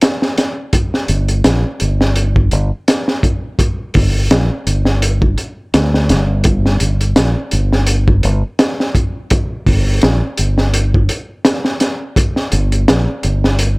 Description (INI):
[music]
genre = trip hop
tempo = 84 BPM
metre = 4/4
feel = swing 56% on 16ths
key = G minor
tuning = A4 = 440 Hz
[part]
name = crunchy breakbeat drum kit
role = drums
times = 0.0-13.8 s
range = hi-hat, kick drum, snare drum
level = -14 LUFS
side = equal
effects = vintage 12-bit sampler grit
[part]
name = fingered electric bass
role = bass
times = 1.1-13.8 s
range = G1 to D2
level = -14 LUFS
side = equal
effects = tube saturation
[sound]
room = little or no reverb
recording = none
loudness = -12 LUFS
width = side -30 dB against mid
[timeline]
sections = 0.0-13.8 A section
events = none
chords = none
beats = 0.02 | 0.74 1.45 2.17 2.88 | 3.59 4.31 5.02 5.74 | 6.45 7.17 7.88 8.59 | 9.31 10.02 10.74 11.45 | 12.16 12.88 13.59